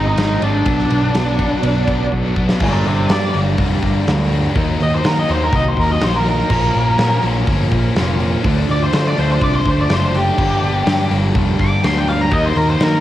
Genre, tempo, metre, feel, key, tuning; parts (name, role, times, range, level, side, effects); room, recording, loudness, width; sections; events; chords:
quiet-loud alternative rock; 124 BPM; 4/4; straight; G minor; A4 = 438 Hz
octave-fuzz lead guitar; melody; 0.0-13.0 s; D4 to D6; -20 LUFS; left 1 dB; distortion, cassette tape, tape echo
string machine, violins; sustained chords; 0.0-13.0 s; Ab3 to D6; -32 LUFS; equal
twelve-string electric guitar; arpeggios; 0.0-2.6 s; B2 to Ab4; -27 LUFS; right 6 dB; tremolo, cassette tape, tape echo
overdriven electric guitar; riff; 0.0-13.0 s; G2 to Eb4; -24 LUFS; left 6 dB; cassette tape
thick fuzz guitar; riff; 0.0-13.0 s; G2 to Eb4; -24 LUFS; right 5 dB; distortion, cassette tape
picked electric bass; bass; 0.0-13.0 s; F1 to Eb3; -18 LUFS; equal
huge arena drum kit; drums; 0.2-12.9 s; crash cymbal, hi-hat, kick drum, ride cymbal, snare drum; -20 LUFS; equal; cassette tape
crunchy overdriven guitar; riff; 2.6-13.0 s; G2 to Eb4; -25 LUFS; equal; cassette tape
little or no reverb; home recording on cassette, vinyl crackle; -14 LUFS; side -13 dB against mid
0.0-2.6 A section; 2.6-13.0 B section
drum fill 2.1-2.6; lead electric guitar solo 2.6-13.0
0.0 Ab; 0.7 Bm; 2.6 Gm; 4.6 Ebm; 6.5 Bbm; 8.4 Dm; 10.4 Gm; 12.3 Ebm